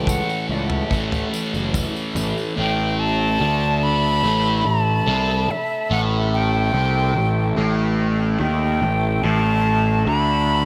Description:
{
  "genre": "psychedelic rock",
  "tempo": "72 BPM",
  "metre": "4/4",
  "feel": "straight",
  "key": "A mixolydian",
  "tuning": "A4 = 436 Hz",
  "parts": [
    { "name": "silver concert flute", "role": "melody", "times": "0.0-10.7 s", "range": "D5 to B5", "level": "-25 LUFS", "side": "equal", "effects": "diffuse ambient delay" },
    { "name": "combo organ", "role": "sustained chords", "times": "0.0-10.7 s", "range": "E3 to E5", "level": "-33 LUFS", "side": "equal", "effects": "none" },
    { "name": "fuzz guitar", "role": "riff", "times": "0.0-10.7 s", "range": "A2 to A3", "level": "-26 LUFS", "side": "equal", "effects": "distortion, phaser" },
    { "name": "fuzz picked electric bass", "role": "bass", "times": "0.0-10.7 s", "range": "F#1 to D#2", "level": "-24 LUFS", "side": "equal", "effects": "overdrive" },
    { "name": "damped 70s drum kit", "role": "drums", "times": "0.1-2.4 s", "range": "kick drum, toms", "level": "-28 LUFS", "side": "equal", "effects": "none" },
    { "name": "tambourine", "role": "percussion", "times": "0.1-2.5 s", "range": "none", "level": "-42 LUFS", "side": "equal", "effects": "none" }
  ],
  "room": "moderate huge ambient reverb, RT60 7.0 s",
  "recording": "dreamy mix soaked in reverb",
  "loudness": "-20 LUFS",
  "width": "mono",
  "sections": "0.0-2.6 A section; 2.6-10.7 B section",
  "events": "none",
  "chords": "0.0 A; 2.6 A5",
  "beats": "0.07 0.90 1.74 | 2.57 3.40 4.24 5.07 | 5.90 6.73 7.57 8.40 | 9.23 10.06"
}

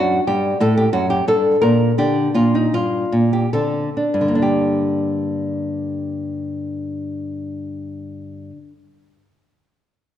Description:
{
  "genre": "classical, baroque-style dance for nylon-string guitar",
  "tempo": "66-93 BPM",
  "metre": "3/4",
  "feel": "rubato",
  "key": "G minor",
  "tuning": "A4 = 440 Hz",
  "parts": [
    { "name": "nylon-string guitar", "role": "solo", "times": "0.0-8.8 s", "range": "F#2 to Bb4", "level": "-17 LUFS", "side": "equal", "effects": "none" }
  ],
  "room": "wet recital hall reverb, RT60 1.7 s",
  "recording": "dark, warm production",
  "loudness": "-17 LUFS",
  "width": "side -10 dB against mid",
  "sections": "0.0-4.4 A section; 4.4-9.7 B section",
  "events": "slowing down 0.0-4.4",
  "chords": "0.0 D/F#; 1.3 Gm; 3.5 D5; 4.4 Gm",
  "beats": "0.58 1.26 | 1.97 2.72 3.53 | 4.41 5.30 6.18 | 7.07 7.96"
}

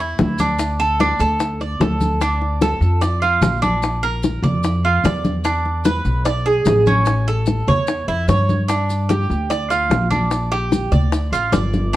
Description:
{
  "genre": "latin, Cuban son and guajira",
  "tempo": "148 BPM",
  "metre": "4/4",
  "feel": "straight",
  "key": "D minor",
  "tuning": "A4 = 441 Hz",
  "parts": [
    { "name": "Cuban tres", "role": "arpeggios", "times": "0.0-12.0 s", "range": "C#4 to D5", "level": "-20 LUFS", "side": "right 2 dB", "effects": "none" },
    { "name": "upright bass", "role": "bass", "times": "0.0-12.0 s", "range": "G1 to G2", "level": "-20 LUFS", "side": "equal", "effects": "none" },
    { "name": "congas", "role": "percussion", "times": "0.0-11.9 s", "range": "none", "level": "-23 LUFS", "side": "left 1 dB", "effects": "none" },
    { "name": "bongos", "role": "percussion", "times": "0.2-11.9 s", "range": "none", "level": "-23 LUFS", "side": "left 4 dB", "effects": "none" },
    { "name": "maracas", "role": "percussion", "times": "0.2-12.0 s", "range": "none", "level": "-36 LUFS", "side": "left 4 dB", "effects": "none" }
  ],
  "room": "moderate studio reverb, RT60 0.8 s",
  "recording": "worn, warbling old tape, cassette tape, warbly pitch drift",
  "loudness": "-16 LUFS",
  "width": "side -14 dB against mid",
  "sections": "0.0-2.2 A section; 2.2-12.0 B section",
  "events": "none",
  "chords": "0.0 N.C.; 0.6 D5; 2.2 Dm; 3.8 Bb; 5.4 E7; 7.1 A; 8.7 Gm7; 10.3 Bb6",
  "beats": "0.20 | 0.60 1.00 1.40 1.81 | 2.21 2.61 3.02 3.42 | 3.83 4.23 4.63 5.04 | 5.45 5.85 6.26 6.66 | 7.07 7.47 7.88 8.29 | 8.69 9.10 9.50 9.91 | 10.32 10.72 11.13 11.54 | 11.94"
}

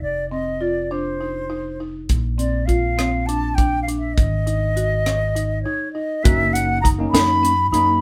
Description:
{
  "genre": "progressive instrumental, band music in an uneven meter",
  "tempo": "202 BPM (eighths)",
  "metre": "7/8",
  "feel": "straight",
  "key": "unclear",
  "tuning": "A4 = 441 Hz",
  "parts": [
    { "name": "mellow silver concert flute", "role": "melody", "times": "0.0-8.0 s", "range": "C5 to B5", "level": "-24 LUFS", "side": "equal", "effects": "none" },
    { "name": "fingered electric bass", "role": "bass", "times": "0.0-8.0 s", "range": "F1 to F#2", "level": "-26 LUFS", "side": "equal", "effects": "none" },
    { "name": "buzzing marimba with medium mallets", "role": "arpeggios", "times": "0.3-8.0 s", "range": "C4 to F#4", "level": "-29 LUFS", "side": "equal", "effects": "none" },
    { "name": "crisp fusion drum kit", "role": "drums", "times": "2.1-7.9 s", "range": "hi-hat, kick drum, rim click, snare drum", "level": "-22 LUFS", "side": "equal", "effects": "none" },
    { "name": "barky tine electric piano", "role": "accompaniment", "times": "6.2-8.0 s", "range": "A#3 to D#4", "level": "-26 LUFS", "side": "equal", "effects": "none" }
  ],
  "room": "moderate small room reverb, RT60 0.5 s",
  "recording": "band playing live in one room",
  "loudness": "-20 LUFS",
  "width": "mono",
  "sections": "0.0-6.2 A section; 6.2-8.0 B section",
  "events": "break 5.7-6.2",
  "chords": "0.0 F5; 2.1 A#add9; 4.2 G#5; 6.2 Bmaj7/F#",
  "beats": "| 0.02 0.32 0.61 0.91 1.21 1.50 1.80 | 2.10 2.39 2.69 2.99 3.28 3.58 3.88 | 4.17 4.47 4.77 5.06 5.36 5.66 5.95 | 6.25 6.54 6.84 7.13 7.43 7.73"
}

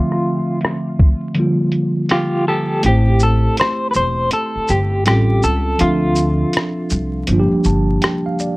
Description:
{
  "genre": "lo-fi hip hop",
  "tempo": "81 BPM",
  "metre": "4/4",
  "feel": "swing 62% on 16ths",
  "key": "unclear",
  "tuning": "A4 = 440 Hz",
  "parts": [
    { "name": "electric guitar at the edge of break-up", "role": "melody", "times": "0.0-7.2 s", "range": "F4 to C5", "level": "-19 LUFS", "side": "equal", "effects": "tremolo, low-pass filter, plate reverb" },
    { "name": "mellow tine electric piano", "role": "accompaniment", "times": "0.0-8.6 s", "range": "D3 to A5", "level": "-19 LUFS", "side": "equal", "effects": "medium stereo tremolo, cassette tape, low-pass filter, plate reverb" },
    { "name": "lo-fi sampler-style drum kit", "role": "drums", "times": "0.1-8.6 s", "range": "hi-hat, kick drum, rim click, shaker", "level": "-17 LUFS", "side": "equal", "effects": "none" },
    { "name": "upright bass", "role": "bass", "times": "2.8-8.0 s", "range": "E1 to D2", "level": "-17 LUFS", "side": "equal", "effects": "none" }
  ],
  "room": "light reverb",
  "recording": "vinyl crackle, low-pass filter",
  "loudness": "-14 LUFS",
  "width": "side -22 dB against mid",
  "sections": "0.0-2.8 A section; 2.8-8.6 B section",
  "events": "filter sweep 0.0-2.8; kick muted 1.4-2.8, 2.8-8.6",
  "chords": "0.0 Dm9; 1.4 Gm7; 2.8 Am7; 5.1 A7alt; 5.8 Dm9; 7.3 Gm7",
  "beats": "0.61 1.35 2.10 | 2.83 3.58 4.32 5.06 | 5.80 6.54 7.28 8.02"
}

